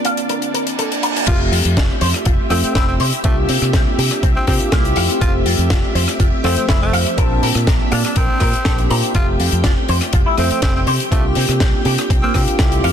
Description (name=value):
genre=nu-disco, nu disco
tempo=122 BPM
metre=4/4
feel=straight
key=F major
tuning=A4 = 439 Hz
part: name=barky tine electric piano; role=accompaniment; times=0.0-12.9 s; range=F3 to A5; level=-22 LUFS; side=right 1 dB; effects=phaser, sidechain pumping, dub echo
part: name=string machine, full ensemble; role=sustained chords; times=0.0-12.9 s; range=D4 to G5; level=-27 LUFS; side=equal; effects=ensemble chorus, sidechain pumping
part: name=tight funk drum kit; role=drums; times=0.0-12.9 s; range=crash cymbal, hi-hat, rim click, snare drum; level=-22 LUFS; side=left 3 dB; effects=none
part: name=electric guitar with an envelope filter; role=riff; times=0.1-12.9 s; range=Bb3 to Bb5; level=-24 LUFS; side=left 1 dB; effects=wide subtle chorus, low-pass filter, dub echo
part: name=reverse cymbal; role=sound effects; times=0.5-1.3 s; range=none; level=-25 LUFS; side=right 4 dB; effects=none
part: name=growling tenor saxophone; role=melody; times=1.3-12.4 s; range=A3 to F4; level=-26 LUFS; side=equal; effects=dub echo
part: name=fingered electric bass with an envelope filter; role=bass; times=1.3-12.9 s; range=F1 to C3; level=-19 LUFS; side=equal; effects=none
part: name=electronic kick drum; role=drums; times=1.3-12.7 s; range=none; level=-17 LUFS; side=equal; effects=overdrive
room=light reverb, small room ambience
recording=dense, heavily limited modern master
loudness=-14 LUFS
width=side -8 dB against mid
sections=0.0-1.3 A section; 1.3-12.9 B section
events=filter sweep on string machine 0.0-1.3; reverse cymbal 0.5-1.3; drop 1.3-12.9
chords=0.0 Bbmaj9; 1.3 Fmaj9; 3.0 C9sus4; 5.0 Fmaj9; 7.2 Bbmaj9; 9.1 Fmaj9; 10.9 C9sus4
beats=0.30 0.79 | 1.28 1.77 2.26 2.75 | 3.25 3.74 4.23 4.72 | 5.21 5.71 6.20 6.69 | 7.18 7.67 8.16 8.66 | 9.15 9.64 10.13 10.62 | 11.12 11.61 12.10 12.59